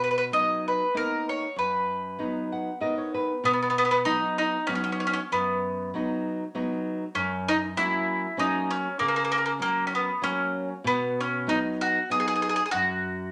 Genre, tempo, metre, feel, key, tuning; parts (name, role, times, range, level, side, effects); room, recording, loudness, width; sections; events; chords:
italian folk; 97 BPM; 3/4; swing 54% on 8ths; B major; A4 = 442 Hz
bowl-back mandolin; melody; 0.0-13.3 s; A#3 to D#5; -27 LUFS; equal
nylon-string guitar; accompaniment; 0.0-13.3 s; F#2 to F#5; -33 LUFS; equal
moderate large studio reverb, RT60 0.8 s; -27 LUFS; mono
0.0-3.4 A section; 3.4-13.3 A section
nylon-string guitar fill 2.2-3.4
0.0 Bmaj7; 3.4 B; 7.2 F#; 10.9 B